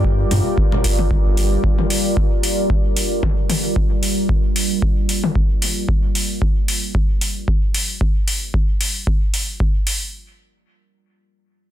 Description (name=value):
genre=dub techno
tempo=113 BPM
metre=4/4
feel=swing 56% on 16ths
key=G minor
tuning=A4 = 440 Hz
part: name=deep dark ambient pad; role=sustained chords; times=0.0-5.8 s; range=G3 to D5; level=-23 LUFS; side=right 1 dB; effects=chorus, built-in reverb, sidechain pumping
part: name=soft dub sub bass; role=bass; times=0.0-1.6 s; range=G1 to G2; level=-18 LUFS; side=equal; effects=sidechain pumping
part: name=electronic kick drum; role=drums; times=0.0-9.7 s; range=none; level=-19 LUFS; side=equal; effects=overdrive
part: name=drifting glass-harmonics texture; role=texture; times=0.0-1.6 s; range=G4 to G5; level=-38 LUFS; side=left 2 dB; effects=none
part: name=electronic hi-hat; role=drums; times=0.3-10.0 s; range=none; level=-22 LUFS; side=equal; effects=overdrive
part: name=electronic congas and toms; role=percussion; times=0.3-5.3 s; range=none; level=-25 LUFS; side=left 4 dB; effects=sidechain pumping on toms, sidechain pumping on perc, dub echo
room=little or no reverb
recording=dense, heavily limited modern master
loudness=-16 LUFS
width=side -12 dB against mid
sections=0.0-10.1 A section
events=none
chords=0.0 Gm7